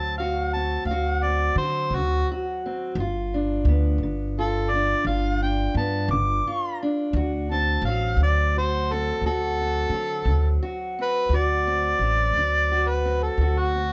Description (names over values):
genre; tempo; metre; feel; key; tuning
acoustic country blues, solo or duo; 58 BPM (dotted quarters); 12/8; straight; D mixolydian; A4 = 441 Hz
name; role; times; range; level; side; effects
overdriven harmonica; melody; 0.0-13.9 s; F#4 to D6; -27 LUFS; equal; plate reverb
fingerpicked steel-string acoustic guitar; accompaniment; 0.0-13.9 s; D2 to F#4; -31 LUFS; equal; none
upright bass; bass; 0.0-13.9 s; G1 to D3; -27 LUFS; equal; none
room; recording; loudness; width
light reverb; nothing above 7.8 kHz; -24 LUFS; mono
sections
0.0-13.9 A section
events
none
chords
0.0 D7; 3.0 G7; 7.1 D7